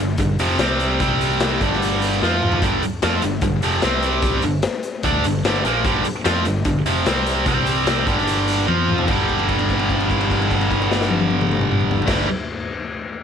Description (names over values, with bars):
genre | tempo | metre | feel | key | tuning
blues rock power trio and southern rock | 148 BPM | 4/4 | straight | unclear | A4 = 440 Hz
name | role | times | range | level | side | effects
tight distorted guitar | riff | 0.0-12.3 s | F2 to F4 | -19 LUFS | right 1 dB | distortion
overdriven picked electric bass | bass | 0.0-12.2 s | F1 to F2 | -24 LUFS | right 1 dB | none
raw garage drum kit | drums | 0.2-12.2 s | crash cymbal, hi-hat, kick drum, snare drum, toms | -22 LUFS | left 3 dB | none
room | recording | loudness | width
studio reverb | 1960s-style stereo | -17 LUFS | side -7 dB against mid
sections
0.0-9.1 A section; 9.1-12.3 B section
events
drum fill 2.2-2.6, 8.7-9.1; held note 9.1-12.1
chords
0.0 G5; 0.6 C5; 1.6 G5; 2.2 F5; 2.6 G5; 3.8 C5; 4.4 Gm; 7.1 C5; 8.1 G5; 8.7 F5; 9.1 G5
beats
0.18 0.59 | 0.99 1.40 1.80 2.21 | 2.62 3.02 3.42 3.83 | 4.23 4.64 5.04 5.45 | 5.85 6.26 6.66 7.07 | 7.47 7.87 8.28 8.68 | 9.09 9.49 9.89 10.30 | 10.70 11.11 11.51 11.91